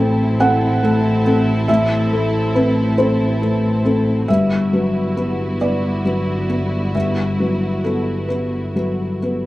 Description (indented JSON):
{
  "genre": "neoclassical piano and strings",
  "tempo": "46 BPM (dotted quarters)",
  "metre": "6/8",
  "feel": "rubato",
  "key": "A dorian",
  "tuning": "A4 = 439 Hz",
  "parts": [
    { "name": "felt-muted upright piano", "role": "accompaniment", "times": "0.0-9.5 s", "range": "G2 to G5", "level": "-18 LUFS", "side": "left 1 dB", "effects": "none" },
    { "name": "rich studio string section", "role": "sustained chords", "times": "0.0-9.5 s", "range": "B3 to A4", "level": "-26 LUFS", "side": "right 2 dB", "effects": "none" },
    { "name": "dark double bass", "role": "bass", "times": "0.0-9.5 s", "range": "G1 to A1", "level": "-20 LUFS", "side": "equal", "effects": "none" }
  ],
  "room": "little or no reverb",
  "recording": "recorded outdoors, with no room sound",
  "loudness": "-15 LUFS",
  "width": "side -17 dB against mid",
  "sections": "0.0-9.5 A section",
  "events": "none",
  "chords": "0.0 Am7; 4.3 Emadd9/G"
}